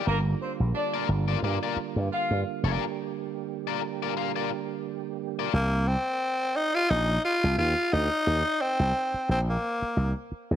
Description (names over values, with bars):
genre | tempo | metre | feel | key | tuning
funk | 88 BPM | 4/4 | swing 56% on 16ths | C minor | A4 = 440 Hz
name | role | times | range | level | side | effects
biting overdriven guitar | accompaniment | 0.0-5.5 s | F4 to F5 | -33 LUFS | left 13 dB | none
tonewheel organ | sustained chords | 0.0-5.5 s | D3 to G4 | -34 LUFS | right 16 dB | slow rotary speaker, chorus vibrato
mellow horn section | second line | 0.1-2.4 s | Bb3 to F5 | -32 LUFS | left 1 dB | none
slap bass with an envelope filter | bass | 0.1-10.6 s | F1 to G2 | -26 LUFS | equal | none
growling tenor saxophone | melody | 5.5-10.1 s | Bb3 to F4 | -25 LUFS | equal | none
room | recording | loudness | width
light reverb, studio reverb | 1960s-style stereo with parts hard left and right | -25 LUFS | side -10 dB against mid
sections
0.0-5.5 A section; 5.5-10.6 B section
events
break 2.8-5.5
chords
0.1 Gm7; 5.5 Cm7; 8.3 Eb5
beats
| 0.07 0.75 1.43 2.12 | 2.80 3.49 4.17 4.85 | 5.54 6.22 6.91 7.59 | 8.27 8.96 9.64 10.32